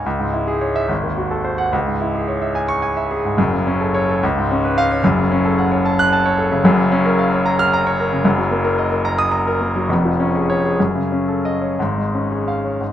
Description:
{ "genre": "classical, romantic character piece for solo piano", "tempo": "57-77 BPM (dotted quarters)", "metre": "6/8", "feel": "rubato", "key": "C# minor, Db major from 6.6 s", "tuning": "A4 = 438 Hz", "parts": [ { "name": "warm baby grand piano", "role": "solo", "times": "0.0-12.9 s", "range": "F1 to F#6", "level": "-15 LUFS", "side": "equal", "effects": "none" } ], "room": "light reverb", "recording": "close, detailed microphones", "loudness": "-15 LUFS", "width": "side -11 dB against mid", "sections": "0.1-12.9 A section", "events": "none", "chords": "0.1 C#m; 0.9 G#7b9; 1.7 C#m; 3.4 F#m; 4.2 C#7; 5.0 F#m; 6.6 Gbmaj7; 8.2 Ebm/Gb; 9.9 Db/F; 10.8 Ebm7b5/Gb; 11.8 Db/Ab", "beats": "| 0.05 0.90 | 1.73 2.55 | 3.38 4.22 | 5.03 5.84 | 6.64 7.45 | 8.25 9.05 | 9.90 10.79 | 11.79 12.81" }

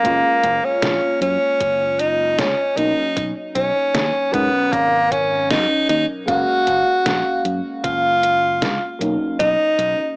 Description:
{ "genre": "vaporwave", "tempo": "77 BPM", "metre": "4/4", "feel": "straight", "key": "F# major", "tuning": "A4 = 440 Hz", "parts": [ { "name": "edgy tenor saxophone", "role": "melody", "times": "0.0-10.2 s", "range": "A#3 to F#4", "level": "-17 LUFS", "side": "equal", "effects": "tape echo" }, { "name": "mellow FM electric piano", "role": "accompaniment", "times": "0.0-10.2 s", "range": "B2 to E#5", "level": "-24 LUFS", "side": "equal", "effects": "analog chorus, cassette tape" }, { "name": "fingered electric bass", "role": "bass", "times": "0.0-10.0 s", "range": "F#1 to G#2", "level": "-27 LUFS", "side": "equal", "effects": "tube saturation" }, { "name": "detuned 8-bit digital drum machine", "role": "drums", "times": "0.0-10.0 s", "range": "hi-hat, snare drum", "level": "-22 LUFS", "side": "equal", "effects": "small room ambience, cassette tape" }, { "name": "electronic kick drum", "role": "drums", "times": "0.0-9.6 s", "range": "none", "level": "-32 LUFS", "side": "equal", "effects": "small room ambience, cassette tape" } ], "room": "wet small room reverb, RT60 0.6 s", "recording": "home recording on cassette, small speaker sound", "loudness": "-16 LUFS", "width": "side -38 dB against mid", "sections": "0.0-10.2 A section", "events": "none", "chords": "0.0 F#maj9; 2.8 Bmaj9; 4.3 G#m11; 6.3 F#maj9; 9.0 Bmaj9", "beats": "| 0.05 0.83 1.61 2.39 | 3.17 3.94 4.72 5.50 | 6.28 7.06 7.84 8.62 | 9.40" }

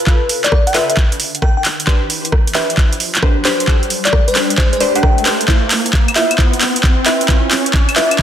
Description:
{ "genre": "UK garage, two-step garage", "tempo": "133 BPM", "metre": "4/4", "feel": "swing 67% on 16ths", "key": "A minor", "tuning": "A4 = 436 Hz", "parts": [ { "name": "bell-like FM electric piano", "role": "melody", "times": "0.0-8.1 s", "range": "B4 to G5", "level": "-20 LUFS", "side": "left 2 dB", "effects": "chorus, tape echo" }, { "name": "punchy chord stab", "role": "stabs", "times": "0.0-8.2 s", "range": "D4 to C5", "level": "-21 LUFS", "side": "equal", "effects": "chorus, phaser, tape echo" }, { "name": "riser", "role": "sound effects", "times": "0.8-8.2 s", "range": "none", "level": "-23 LUFS", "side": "right 1 dB", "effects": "none" }, { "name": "electronic kick drum", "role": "drums", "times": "0.1-8.2 s", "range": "none", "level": "-13 LUFS", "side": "equal", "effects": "overdrive" }, { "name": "garage drum kit", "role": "drums", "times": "0.1-8.2 s", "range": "claves, handclaps, hi-hat, rim click", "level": "-16 LUFS", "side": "right 1 dB", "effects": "overdrive" } ], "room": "moderate digital room reverb, RT60 1.1 s, digital ambience", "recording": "dense, heavily limited modern master", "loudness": "-11 LUFS", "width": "side -10 dB against mid", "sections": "0.0-8.2 A section", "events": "build-up 0.0-8.2; drum fill 0.0-8.2; riser 0.8-8.2", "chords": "0.0 F(#11); 1.9 Am11; 5.5 Cadd11/E; 7.1 E5", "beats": "| 0.07 0.52 0.97 1.42 | 1.87 2.32 2.77 3.23 | 3.68 4.13 4.58 5.03 | 5.48 5.93 6.38 6.83 | 7.29 7.74 8.19" }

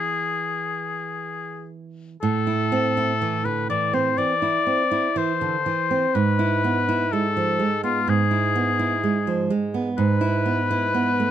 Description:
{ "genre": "romantic duo for oboe and classical guitar", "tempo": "58-64 BPM", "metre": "4/4", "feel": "rubato", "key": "unclear", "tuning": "A4 = 438 Hz", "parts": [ { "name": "warm oboe", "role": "melody", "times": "0.0-11.3 s", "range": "F4 to D5", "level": "-23 LUFS", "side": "left 5 dB", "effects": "none" }, { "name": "nylon-string guitar", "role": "accompaniment", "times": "0.0-11.3 s", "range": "G#2 to E4", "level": "-23 LUFS", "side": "right 4 dB", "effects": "none" } ], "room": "light reverb", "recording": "close, detailed microphones", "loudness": "-20 LUFS", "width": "side -10 dB against mid", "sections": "0.0-2.2 A section; 2.2-11.3 B section", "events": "none", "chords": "0.0 E; 2.2 Am; 6.2 E/G#", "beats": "0.19 1.20 | 2.22 3.21 4.18 5.17 | 6.16 7.13 8.09 9.03 | 9.98 10.95" }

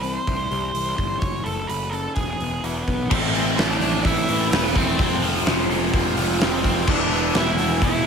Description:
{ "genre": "quiet-loud alternative rock", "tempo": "127 BPM", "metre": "4/4", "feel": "straight", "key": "A harmonic minor from 3.1 s", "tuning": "A4 = 439 Hz", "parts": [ { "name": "octave-fuzz lead guitar", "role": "melody", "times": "0.0-8.1 s", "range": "B3 to E5", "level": "-26 LUFS", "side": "right 2 dB", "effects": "distortion, slapback echo, analog delay" }, { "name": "fingerpicked plugged-in steel-string acoustic guitar", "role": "arpeggios", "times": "0.0-3.1 s", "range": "C3 to E4", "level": "-32 LUFS", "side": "left 8 dB", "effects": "slapback echo" }, { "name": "fuzz picked electric bass", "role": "bass", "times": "0.0-8.0 s", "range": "E1 to C2", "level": "-28 LUFS", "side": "equal", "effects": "overdrive" }, { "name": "big rock drum kit", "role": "drums", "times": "0.0-7.9 s", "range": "crash cymbal, hi-hat, kick drum, snare drum", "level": "-24 LUFS", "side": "equal", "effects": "none" }, { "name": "fuzz guitar", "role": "riff", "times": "3.1-8.1 s", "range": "A2 to F4", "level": "-25 LUFS", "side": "equal", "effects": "distortion, slapback echo" }, { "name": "overdriven electric guitar", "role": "riff", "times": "3.1-8.1 s", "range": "E2 to A3", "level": "-24 LUFS", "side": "equal", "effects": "phaser" } ], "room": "moderate lush hall reverb, RT60 1.8 s", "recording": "big arena sound", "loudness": "-19 LUFS", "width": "side -6 dB against mid", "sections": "0.0-3.1 A section; 3.1-8.1 B section", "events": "none", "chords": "0.0 C; 1.2 F#m; 2.2 E; 3.1 Am; 5.0 Fm; 6.9 E", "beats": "0.27 0.75 | 1.22 1.69 2.17 2.64 | 3.11 3.58 4.06 4.53 | 5.00 5.47 5.94 6.41 | 6.88 7.35 7.82" }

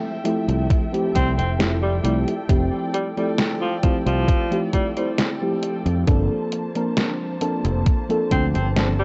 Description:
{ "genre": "vaporwave", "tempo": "67 BPM", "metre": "4/4", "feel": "straight", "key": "F major", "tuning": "A4 = 438 Hz", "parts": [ { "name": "mellow FM electric piano", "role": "accompaniment", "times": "0.0-8.9 s", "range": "F3 to C5", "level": "-26 LUFS", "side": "equal", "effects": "tremolo, subtle chorus, tape echo" }, { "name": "muted studio string section", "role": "sustained chords", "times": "0.0-9.0 s", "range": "F3 to A5", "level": "-35 LUFS", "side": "equal", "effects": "none" }, { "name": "detuned 8-bit digital drum machine", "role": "drums", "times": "0.3-9.0 s", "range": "hi-hat, snare drum", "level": "-28 LUFS", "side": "equal", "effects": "overdrive, vintage 12-bit sampler grit" }, { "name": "fretless electric bass", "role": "bass", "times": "0.5-9.0 s", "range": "F1 to F2", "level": "-24 LUFS", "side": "equal", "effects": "none" }, { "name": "electronic kick drum", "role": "drums", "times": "0.7-8.5 s", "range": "none", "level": "-22 LUFS", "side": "equal", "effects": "overdrive, vintage 12-bit sampler grit" }, { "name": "bright alto saxophone", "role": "melody", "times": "1.2-9.0 s", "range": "F3 to C4", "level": "-29 LUFS", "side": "equal", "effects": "tape echo" } ], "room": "light reverb, digital ambience", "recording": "worn, warbling old tape, cassette tape, warbly pitch drift, nothing above 7.9 kHz", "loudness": "-21 LUFS", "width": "mono", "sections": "0.0-9.0 A section", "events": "none", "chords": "0.0 Fmaj9; 6.1 Gm11", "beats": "0.70 1.60 | 2.49 3.39 4.28 5.18 | 6.07 6.97 7.87 8.76" }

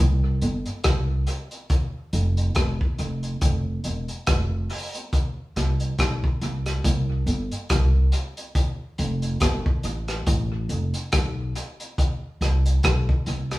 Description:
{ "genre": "roots reggae", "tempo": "70 BPM", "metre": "4/4", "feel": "swing 58% on 16ths", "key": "C major", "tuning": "A4 = 445 Hz", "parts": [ { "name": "upright bass", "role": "bass", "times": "0.0-13.6 s", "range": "E1 to C2", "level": "-23 LUFS", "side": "equal", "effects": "none" }, { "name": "crunchy breakbeat drum kit", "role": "drums", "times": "0.4-13.6 s", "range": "hi-hat, kick drum, rim click", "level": "-24 LUFS", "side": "equal", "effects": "none" } ], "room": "light reverb", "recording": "band playing live in one room, studio reverb", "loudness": "-22 LUFS", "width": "side -18 dB against mid", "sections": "0.0-13.6 A section", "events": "none", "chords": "none", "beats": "0.84 | 1.70 2.56 3.41 4.27 | 5.12 5.98 6.84 7.69 | 8.55 9.41 10.26 11.12 | 11.98 12.84" }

